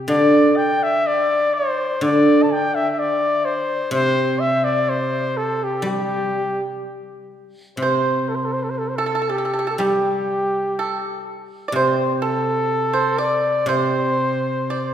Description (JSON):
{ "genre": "chinese traditional, Chinese chamber ensemble", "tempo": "62 BPM", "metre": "2/4", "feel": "rubato", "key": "unclear", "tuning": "A4 = 441 Hz", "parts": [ { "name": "guzheng", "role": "accompaniment", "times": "0.0-14.9 s", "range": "C3 to G3", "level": "-22 LUFS", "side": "right 1 dB", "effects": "none" }, { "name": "breathy trumpet", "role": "melody", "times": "0.1-14.9 s", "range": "G4 to A5", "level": "-20 LUFS", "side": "left 2 dB", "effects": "none" }, { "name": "pipa", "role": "second line", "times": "7.8-14.9 s", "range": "G4 to D5", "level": "-24 LUFS", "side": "right 3 dB", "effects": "none" } ], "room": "wet concert hall reverb, RT60 2.0 s", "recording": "heard from further back in the room", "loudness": "-17 LUFS", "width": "side -10 dB against mid", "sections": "0.0-7.8 A section; 7.8-14.9 B section", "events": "none", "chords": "none" }